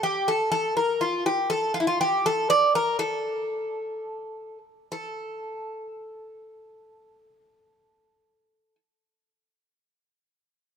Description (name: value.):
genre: greek folk.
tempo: 201-248 BPM (eighths).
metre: 7/8.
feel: straight.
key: unclear.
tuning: A4 = 439 Hz.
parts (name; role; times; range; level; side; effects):
Greek bouzouki; solo; 0.0-8.8 s; E4 to D5; -24 LUFS; equal; none.
room: light reverb.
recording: none.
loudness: -23 LUFS.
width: side -7 dB against mid.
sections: 0.0-4.9 A section; 4.9-9.0 B section.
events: slowing down 1.2-4.9.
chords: none.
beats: 0.03 0.27 0.52 0.76 1.00 | 1.24 1.49 1.73 1.97 2.22 2.47 2.72 | 2.98 3.24 3.50 3.77 4.04 4.32 4.61 | 4.91 5.20 5.50 5.80 6.09 6.39 6.69 | 6.98 7.28 7.57 7.87 8.16 8.46 8.75.